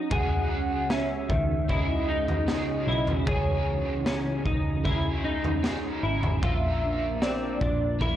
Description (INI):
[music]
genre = dream pop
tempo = 76 BPM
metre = 4/4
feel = straight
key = C# minor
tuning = A4 = 439 Hz
[part]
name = warbly tape-like pad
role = sustained chords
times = 0.0-8.2 s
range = C#3 to G#4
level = -34 LUFS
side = equal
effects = chorus, built-in reverb
[part]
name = semi-hollow electric guitar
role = arpeggios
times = 0.0-8.2 s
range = D#3 to G#4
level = -31 LUFS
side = left 1 dB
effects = ensemble chorus, analog delay
[part]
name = warm velvety synth lead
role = melody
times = 0.1-8.2 s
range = A#4 to F#5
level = -31 LUFS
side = right 1 dB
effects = chorus, analog delay
[part]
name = crunchy overdriven guitar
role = accompaniment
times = 0.1-8.2 s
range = A#2 to A#4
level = -34 LUFS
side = right 2 dB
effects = harmonic tremolo, analog chorus
[part]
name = vintage muted picked electric bass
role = bass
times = 0.1-8.2 s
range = G#1 to C#2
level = -32 LUFS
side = equal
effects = none
[part]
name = raw garage drum kit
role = drums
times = 0.1-8.2 s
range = kick drum, snare drum, toms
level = -29 LUFS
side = equal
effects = none
[sound]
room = small room ambience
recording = transformer saturation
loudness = -24 LUFS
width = side -11 dB against mid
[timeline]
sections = 0.0-8.2 A section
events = none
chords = 0.1 C#madd9; 6.4 A#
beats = | 0.11 0.90 1.69 2.48 | 3.27 4.06 4.85 5.64 | 6.43 7.22 8.01